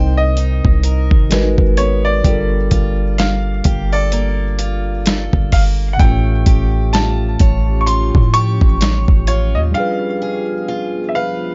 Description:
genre	contemporary R&B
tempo	64 BPM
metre	4/4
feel	swing 58% on 16ths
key	G minor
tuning	A4 = 440 Hz
part	clear baby grand piano	melody	0.0-11.5 s	C#5 to C#6	-24 LUFS	equal	delay
part	mellow tine electric piano	accompaniment	0.0-11.5 s	A2 to Eb5	-24 LUFS	equal	phaser
part	picked acoustic archtop guitar	arpeggios	0.0-11.5 s	G3 to C#5	-29 LUFS	equal	delay
part	warm 808-style bass	bass	0.0-9.7 s	G1 to A2	-19 LUFS	equal	none
part	dusty soul sampler-style drum kit	drums	0.4-9.5 s	hi-hat, kick drum, snare drum	-17 LUFS	equal	overdrive
part	deep dark ambient pad	sustained chords	7.1-11.5 s	E#3 to Ab4	-31 LUFS	equal	chorus, built-in reverb, sidechain pumping
room	little or no reverb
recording	dark, warm production, nothing above 7.6 kHz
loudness	-15 LUFS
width	mono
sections	0.0-11.5 A section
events	break 9.7-11.5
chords	0.0 Cm7; 1.3 Abm9; 2.2 Gm9; 6.0 Aaug7; 9.7 G7b9

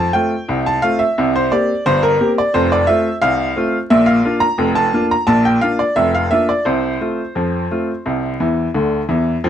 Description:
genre	ragtime piano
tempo	87 BPM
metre	2/4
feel	straight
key	F major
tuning	A4 = 440 Hz
part	clear upright piano	solo	0.0-9.5 s	F1 to Bb5	-14 LUFS	equal	none
room	moderate small room reverb, RT60 0.5 s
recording	dark, warm production, vinyl crackle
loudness	-14 LUFS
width	side -9 dB against mid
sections	0.0-9.5 A section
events	upright piano fill 8.4-9.4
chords	0.0 F; 1.2 C5; 2.5 F; 3.9 Bb; 6.7 F/C; 8.1 C

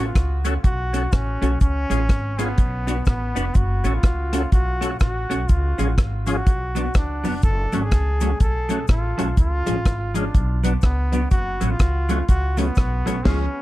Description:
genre	ska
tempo	124 BPM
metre	4/4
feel	swing 61% on 8ths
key	F# harmonic minor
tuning	A4 = 440 Hz
part	brilliant trombone	melody	0.0-13.6 s	B3 to A4	-28 LUFS	equal	analog delay
part	clean electric guitar	accompaniment	0.0-13.5 s	E#3 to F#4	-28 LUFS	right 2 dB	none
part	percussive tonewheel organ	stabs	0.0-13.5 s	G#3 to B4	-30 LUFS	left 3 dB	overdrive, chorus vibrato, slow rotary speaker
part	upright bass	bass	0.0-13.5 s	E#1 to C#2	-23 LUFS	equal	none
part	deep reggae drum kit	drums	0.2-13.4 s	crash cymbal, hi-hat, kick drum, rim click, snare drum	-19 LUFS	equal	none
part	cabasa	percussion	0.2-13.2 s	none	-43 LUFS	left 18 dB	none
room	little or no reverb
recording	dark, warm production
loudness	-18 LUFS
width	side -16 dB against mid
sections	0.0-13.6 A section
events	drum fill 13.3-13.6; band accent 13.3-13.6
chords	0.0 F#m; 1.6 C#; 2.6 Bm; 3.6 F#m; 5.5 C#; 6.5 Bm; 7.4 F#m; 9.4 C#; 10.3 Bm; 11.3 F#m

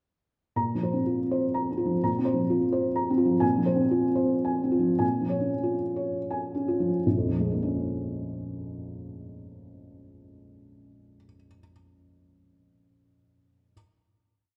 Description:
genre	neoclassical minimalist piano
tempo	80-128 BPM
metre	3/4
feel	rubato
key	Bb minor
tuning	A4 = 443 Hz
part	felt-muted upright piano	solo	0.6-13.7 s	Bb1 to Bb5	-27 LUFS	equal	none
room	wet recital hall reverb, RT60 1.8 s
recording	recorded in a church or concert hall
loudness	-26 LUFS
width	mono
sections	0.6-7.0 A section; 7.0-11.5 final chord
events	slowing down 2.7-7.0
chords	0.6 Bbsus2; 3.4 Fm/Bb; 5.0 Bbm7

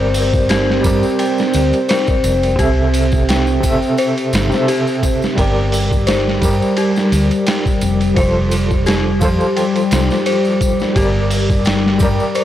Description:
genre	trip hop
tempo	86 BPM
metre	4/4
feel	swing 55% on 16ths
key	G dorian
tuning	A4 = 440 Hz
part	overdriven reed electric piano	accompaniment	0.0-12.4 s	C3 to E5	-20 LUFS	equal	fast tremolo, tape echo
part	dark analog pad	sustained chords	0.0-12.4 s	G3 to C5	-19 LUFS	equal	chorus
part	dark detuned synth bell	arpeggios	0.0-12.4 s	G4 to G5	-22 LUFS	left 3 dB	chorus, phaser, vintage 12-bit sampler grit, tape echo
part	hollow-body short-scale fingered electric bass	bass	0.0-12.2 s	F1 to G2	-18 LUFS	equal	none
part	trip hop sampler-style drum kit	drums	0.1-12.4 s	hi-hat, kick drum, ride cymbal, snare drum	-19 LUFS	right 1 dB	none
part	tambourine and triangle	percussion	0.1-12.4 s	none	-33 LUFS	right 2 dB	none
room	little or no reverb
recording	dry, gritty hardware recording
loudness	-13 LUFS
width	side -12 dB against mid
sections	0.0-12.4 A section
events	none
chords	0.0 Gm; 2.6 C6; 5.4 Gm; 8.2 F; 11.0 Gm

